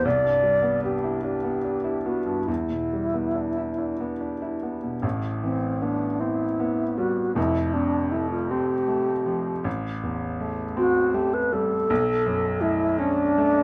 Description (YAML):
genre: classical, impressionist duo for alto flute and grand piano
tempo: 45-55 BPM (dotted quarters)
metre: 6/8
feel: rubato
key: A minor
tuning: A4 = 435 Hz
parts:
  - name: mellow wooden-headed alto flute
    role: melody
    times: 0.0-13.6 s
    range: C4 to D5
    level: -26 LUFS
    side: equal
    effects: none
  - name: clear baby grand piano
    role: accompaniment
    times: 0.0-13.6 s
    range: F1 to E4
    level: -29 LUFS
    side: equal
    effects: none
room: light reverb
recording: none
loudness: -25 LUFS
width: mono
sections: 0.0-5.0 A section; 5.0-13.6 B section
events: none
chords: 0.1 Cmaj9; 2.5 Em7; 5.0 Am9; 7.4 F; 9.7 Am7; 11.9 Bm9